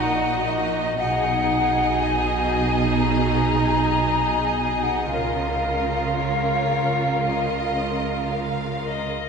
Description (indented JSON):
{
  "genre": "cinematic, emotional film score for orchestra",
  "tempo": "56-60 BPM",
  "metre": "4/4",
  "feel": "rubato",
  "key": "unclear",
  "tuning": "A4 = 440 Hz",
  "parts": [
    { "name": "clear symphonic violin section", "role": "melody", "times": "0.0-9.3 s", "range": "Db5 to F5", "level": "-32 LUFS", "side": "right 1 dB", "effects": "none" },
    { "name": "hollow concert flute", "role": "second line", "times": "0.0-8.8 s", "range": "Eb5 to Bb5", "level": "-24 LUFS", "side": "left 2 dB", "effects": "none" },
    { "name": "warm symphonic violin section", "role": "second line", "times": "0.0-9.1 s", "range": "Gb4 to Bb4", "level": "-29 LUFS", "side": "left 1 dB", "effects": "none" },
    { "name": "rich symphonic viola section", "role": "accompaniment", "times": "0.0-9.1 s", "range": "Eb4 to F4", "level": "-28 LUFS", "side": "right 2 dB", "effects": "none" },
    { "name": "clear symphonic double bass section", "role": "bass", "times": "0.0-9.1 s", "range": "Bb1 to Db2", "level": "-28 LUFS", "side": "right 3 dB", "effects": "none" },
    { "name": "rich symphonic cello section", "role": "bass", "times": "0.0-9.1 s", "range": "Bb2 to Db3", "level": "-28 LUFS", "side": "right 3 dB", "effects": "none" },
    { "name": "rich violin", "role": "melody", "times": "8.8-9.3 s", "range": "Eb5", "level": "-29 LUFS", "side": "left 8 dB", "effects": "none" }
  ],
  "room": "wet church reverb, RT60 3.0 s",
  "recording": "minimal, uncompressed stereo recording, lossy compression artefacts",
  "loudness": "-20 LUFS",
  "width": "side -5 dB against mid",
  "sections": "0.0-9.3 A section",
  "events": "none",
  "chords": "0.0 Ebm/Bb; 1.0 Abm/Cb; 5.1 Bbm/Db"
}